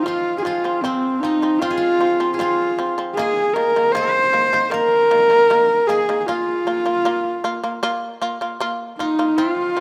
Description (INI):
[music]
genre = mongolian traditional, Mongolian folk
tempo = 77 BPM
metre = 4/4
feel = straight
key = unclear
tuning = A4 = 440 Hz
[part]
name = warm horsehead fiddle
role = melody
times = 0.0-9.8 s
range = C4 to C5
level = -19 LUFS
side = equal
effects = none
[part]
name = steel-string zither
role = second line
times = 0.0-9.8 s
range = C4 to C5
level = -32 LUFS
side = equal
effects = none
[part]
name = shamisen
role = arpeggios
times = 0.0-9.8 s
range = Eb3 to F4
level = -27 LUFS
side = equal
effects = none
[sound]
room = light reverb, studio reverb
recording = rough home demo mix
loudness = -19 LUFS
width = mono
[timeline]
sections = 0.0-9.8 A section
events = none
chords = 0.0 F5; 3.2 Eb5; 6.3 Bb5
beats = | 0.06 0.84 1.62 2.39 | 3.17 3.95 4.72 5.50 | 6.28 7.05 7.83 8.60 | 9.38